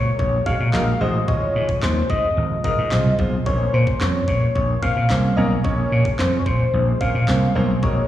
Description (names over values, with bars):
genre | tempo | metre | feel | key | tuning
dance-pop | 110 BPM | 4/4 | straight | Bb minor | A4 = 441 Hz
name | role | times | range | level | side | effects
soft struck synth lead | melody | 0.0-8.1 s | C5 to F5 | -23 LUFS | left 2 dB | chorus, digital delay, plate reverb, slapback echo
sweeping resonant pad | sustained chords | 0.0-8.1 s | C3 to Db4 | -32 LUFS | left 1 dB | chorus, sidechain pumping
vintage slap bass | bass | 0.0-8.0 s | Ab1 to Bb2 | -20 LUFS | equal | sidechain pumping
smooth R&B drum kit | drums | 0.2-8.0 s | handclaps, kick drum, snare drum | -25 LUFS | equal | overdrive
clear grand piano | accompaniment | 0.5-8.1 s | Ab3 to Eb5 | -26 LUFS | right 1 dB | sidechain pumping, plate reverb, slapback echo
room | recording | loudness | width
light reverb | live gig heard through the venue's PA, recital hall reverb, small room ambience | -17 LUFS | side -12 dB against mid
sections
0.0-8.1 A section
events
none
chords
0.0 Gbadd9/Bb; 1.3 Ab6; 3.5 Bbmadd9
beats
0.19 0.74 | 1.28 1.83 2.37 2.92 | 3.46 4.01 4.55 5.10 | 5.64 6.19 6.74 7.28 | 7.83